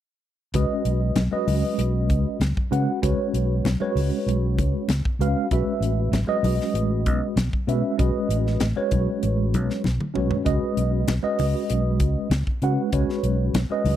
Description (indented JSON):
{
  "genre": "electric jazz fusion",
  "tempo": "97 BPM",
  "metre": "4/4",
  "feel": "straight",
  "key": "unclear",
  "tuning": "A4 = 438 Hz",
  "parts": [
    { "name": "mellow tine electric piano", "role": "accompaniment", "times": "0.5-14.0 s", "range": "Ab3 to Gb5", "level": "-24 LUFS", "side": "right 1 dB", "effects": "fast stereo tremolo, phaser" },
    { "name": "fingered electric bass", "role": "bass", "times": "0.5-14.0 s", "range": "A1 to Db3", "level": "-23 LUFS", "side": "equal", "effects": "none" },
    { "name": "crisp fusion drum kit", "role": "drums", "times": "0.5-14.0 s", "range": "hi-hat, kick drum, snare drum, toms", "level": "-28 LUFS", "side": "equal", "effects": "none" },
    { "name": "congas", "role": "percussion", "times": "0.5-14.0 s", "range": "none", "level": "-29 LUFS", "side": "left 4 dB", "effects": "none" }
  ],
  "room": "little or no reverb",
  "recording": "dry, close 1970s-style studio recording",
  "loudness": "-20 LUFS",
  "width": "side -11 dB against mid",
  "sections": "0.5-14.0 A section",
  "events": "drum fill 9.8-10.5",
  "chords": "0.5 Db9sus4; 5.5 Cb13sus4; 10.5 Db9sus4"
}